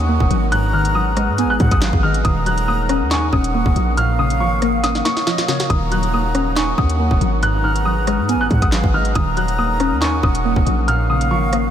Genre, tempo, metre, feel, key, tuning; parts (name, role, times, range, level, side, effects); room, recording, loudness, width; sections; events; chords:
hip hop, drill; 139 BPM; 4/4; half-time; Eb minor; A4 = 441 Hz
bright upright piano; melody; 0.0-11.7 s; Db6 to Gb6; -22 LUFS; equal; low-pass filter, tape echo
breathy hollow jazz flute; second line; 0.0-11.7 s; Db5 to Bb5; -26 LUFS; right 2 dB; tape echo
soft round pluck; accompaniment; 0.0-11.7 s; Ab2 to Eb4; -22 LUFS; left 1 dB; chorus, low-pass filter
glass harmonica; sustained chords; 0.0-11.7 s; Ab3 to Gb5; -28 LUFS; left 1 dB; stereo widening
hard-hitting 808-style bass; bass; 0.0-11.7 s; Eb1 to Ab2; -20 LUFS; equal
drill drum kit; drums; 0.2-11.6 s; handclaps, hi-hat, kick drum, rim click, snare drum; -22 LUFS; equal
moderate huge ambient reverb, RT60 8.3 s; dreamy mix soaked in reverb; -15 LUFS; side -10 dB against mid
0.0-11.7 A section
drum fill 4.8-5.7
0.0 Ebm7; 0.5 Abm7; 2.2 Ebm7; 4.0 Bbm; 5.7 Ebm7; 7.4 Abm7; 9.2 Ebm7; 10.9 Bbm